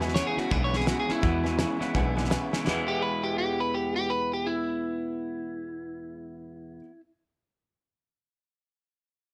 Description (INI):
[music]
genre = rockabilly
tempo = 167 BPM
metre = 4/4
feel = swing 60% on 8ths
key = E major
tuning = A4 = 440 Hz
[part]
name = honky-tonk upright piano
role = accompaniment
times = 0.0-6.8 s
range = B4 to B5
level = -41 LUFS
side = equal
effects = none
[part]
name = picked steel-string acoustic guitar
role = accompaniment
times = 0.0-6.9 s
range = E2 to E4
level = -38 LUFS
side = equal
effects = none
[part]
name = electric guitar through a small old amp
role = riff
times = 0.0-6.9 s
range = E2 to E4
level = -36 LUFS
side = equal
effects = none
[part]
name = upright bass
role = bass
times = 0.0-6.8 s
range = B1 to E2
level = -35 LUFS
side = equal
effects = none
[part]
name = cloth-damped thuddy drum kit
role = drums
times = 0.0-2.8 s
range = hi-hat, kick drum, snare drum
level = -32 LUFS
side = equal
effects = none
[part]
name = electric guitar at the edge of break-up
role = melody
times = 0.1-7.0 s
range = E4 to C#5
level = -32 LUFS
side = equal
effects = tape echo
[sound]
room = light reverb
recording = none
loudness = -28 LUFS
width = mono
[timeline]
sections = 0.0-2.7 A section; 2.7-5.5 B section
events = drum fill 2.5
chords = 0.0 E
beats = 0.15 0.51 0.87 | 1.23 1.59 1.95 2.31 | 2.66 3.02 3.38 3.74 | 4.10 4.46 4.82 5.18